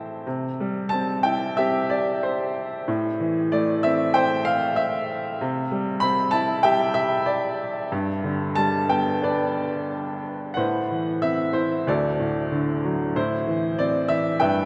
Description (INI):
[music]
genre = classical, lyrical solo piano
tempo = 93 BPM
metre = 4/4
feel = uneven beats, rubato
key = C major, A dorian from 10.6 s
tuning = A4 = 438 Hz
[part]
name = bright upright piano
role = solo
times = 0.0-14.7 s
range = D2 to B5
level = -24 LUFS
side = equal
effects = none
[sound]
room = wet cathedral reverb, RT60 5.2 s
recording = in a vast, echoing space, nothing above 10.8 kHz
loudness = -24 LUFS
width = mono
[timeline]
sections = 0.0-10.6 A section; 10.6-14.7 B section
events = none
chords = 0.3 C; 2.9 Am; 5.4 C; 7.9 G; 10.6 Amadd9; 11.9 D; 13.2 Am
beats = | 0.26 0.92 1.58 2.23 | 2.88 3.52 4.16 4.79 | 5.41 6.03 6.66 7.29 | 7.93 8.57 9.23 9.90 | 10.58 11.23 11.88 12.53 | 13.16 13.78 14.41